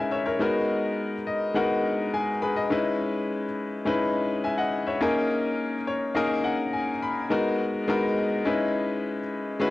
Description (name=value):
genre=soul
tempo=104 BPM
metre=4/4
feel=straight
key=G# minor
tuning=A4 = 440 Hz
part: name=bright grand piano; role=solo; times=0.0-9.7 s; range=G#3 to B5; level=-24 LUFS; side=left 2 dB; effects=cassette tape
room=light reverb, studio reverb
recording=home recording on cassette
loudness=-24 LUFS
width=side -17 dB against mid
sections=0.0-7.3 A section; 7.3-9.7 B section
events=grand piano fill 1.0-2.7, 5.6-7.3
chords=0.4 G#m7; 2.7 C#m7; 5.0 D#7sus4; 7.3 G#m9; 8.5 C#m9/G#